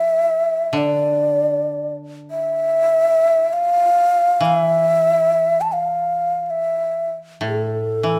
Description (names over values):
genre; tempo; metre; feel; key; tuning
japanese traditional, Japanese chamber music; free time; none; none; unclear; A4 = 441 Hz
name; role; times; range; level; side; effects
breathy mellow long shakuhachi; melody; 0.0-8.2 s; A4 to A5; -19 LUFS; equal; none
koto; accompaniment; 0.0-8.2 s; A2 to F3; -28 LUFS; equal; none
room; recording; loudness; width
light reverb; none; -18 LUFS; mono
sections
0.0-8.2 A section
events
slowing down 4.5-8.2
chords
none